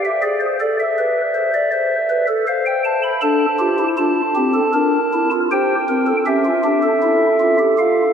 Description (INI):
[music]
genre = classical, baroque-style 4-part fugue for pipe organ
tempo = 79 BPM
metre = 4/4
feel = straight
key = unclear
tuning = A4 = 440 Hz
[part]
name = pipe organ, stopped flute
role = solo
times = 0.0-8.1 s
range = C4 to B5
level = -15 LUFS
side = equal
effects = none
[sound]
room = wet cathedral reverb, RT60 6.3 s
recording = none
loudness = -15 LUFS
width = side -7 dB against mid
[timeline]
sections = 0.0-8.1 A section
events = none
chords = 0.2 E7/G#; 1.7 Am; 3.2 Dm; 4.8 Gm/D; 6.3 A7/C#